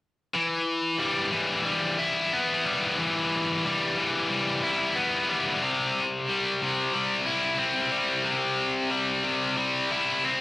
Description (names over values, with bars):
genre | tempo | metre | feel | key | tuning
metal | 91 BPM | 4/4 | straight | E minor | A4 = 441 Hz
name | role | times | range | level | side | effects
heavy high-gain guitar | solo | 0.3-10.4 s | C3 to E4 | -24 LUFS | left 1 dB | distortion, cassette tape
room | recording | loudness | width
light reverb | home recording on cassette | -24 LUFS | side -18 dB against mid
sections
0.3-10.4 A section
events
none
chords
0.3 Em; 5.6 C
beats
| 0.35 1.01 1.66 2.32 | 2.98 3.64 4.30 4.96 | 5.62 6.28 6.94 7.60 | 8.26 8.92 9.58 10.24